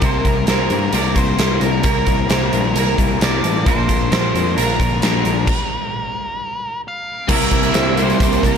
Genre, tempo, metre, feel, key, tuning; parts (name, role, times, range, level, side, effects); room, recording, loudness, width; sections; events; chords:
rock, shoegaze and dream pop; 132 BPM; 4/4; straight; C mixolydian; A4 = 440 Hz
octave-fuzz lead guitar; melody; 0.0-8.6 s; Bb4 to F5; -25 LUFS; equal; distortion, analog delay
electric guitar through a small old amp; arpeggios; 0.0-8.6 s; A4 to C5; -26 LUFS; right 10 dB; wide subtle chorus, analog delay
crunchy overdriven guitar; riff; 0.0-8.6 s; Bb2 to Bb4; -24 LUFS; right 12 dB; reverse reverb
overdriven semi-hollow guitar; riff; 0.0-8.6 s; Bb2 to Bb4; -21 LUFS; left 12 dB; wide subtle chorus
fuzz picked electric bass; bass; 0.0-8.6 s; A1 to G2; -21 LUFS; equal; overdrive
huge arena drum kit; drums; 0.0-8.5 s; crash cymbal, hi-hat, kick drum, snare drum; -19 LUFS; equal
biting overdriven guitar; riff; 7.3-8.6 s; C3 to E4; -24 LUFS; right 1 dB
light reverb, studio reverb; -15 LUFS; side -7 dB against mid
0.0-7.3 A section; 7.3-8.6 B section
stop 5.5-7.3
0.0 C7; 3.7 Bb; 7.3 C7